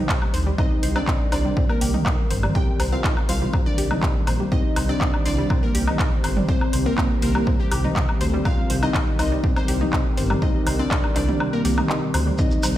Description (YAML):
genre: melodic techno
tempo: 122 BPM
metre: 4/4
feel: straight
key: C minor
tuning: A4 = 439 Hz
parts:
  - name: dark analog pad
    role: sustained chords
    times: 0.0-12.8 s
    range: Eb3 to D5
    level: -29 LUFS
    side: left 1 dB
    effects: chorus, vintage 12-bit sampler grit, sidechain pumping
  - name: tight sequenced synth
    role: arpeggios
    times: 0.0-12.7 s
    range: G3 to C5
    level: -29 LUFS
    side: equal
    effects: chorus, cassette tape, sidechain pumping, tape echo
  - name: electronic kick drum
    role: drums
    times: 0.1-12.5 s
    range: none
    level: -22 LUFS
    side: equal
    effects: small room ambience
  - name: techno drum kit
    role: drums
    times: 0.1-12.7 s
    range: handclaps, hi-hat, toms, woodblock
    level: -27 LUFS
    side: equal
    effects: small room ambience, sidechain pumping on toms, sidechain pumping on perc, sidechain pumping on cymbals, sidechain pumping on hats
  - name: dark detuned saw bass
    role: bass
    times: 0.3-12.8 s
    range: G1 to D2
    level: -24 LUFS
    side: equal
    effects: sidechain pumping
  - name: soft octave-layered synth lead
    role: melody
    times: 0.6-12.6 s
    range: G3 to G4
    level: -29 LUFS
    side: equal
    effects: chorus, sidechain pumping, digital delay
  - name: glassy wavetable pluck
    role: second line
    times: 0.6-12.6 s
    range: G4 to G5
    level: -33 LUFS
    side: left 2 dB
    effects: chorus, sidechain pumping, tape echo
  - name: shekere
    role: percussion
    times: 12.4-12.7 s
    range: none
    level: -30 LUFS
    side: right 2 dB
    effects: none
room: light reverb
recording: played on a big sound system in a bare room, stone room reverb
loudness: -19 LUFS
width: side -13 dB against mid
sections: 0.0-12.8 A section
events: kick drops out 11.4-12.4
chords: 0.0 Cm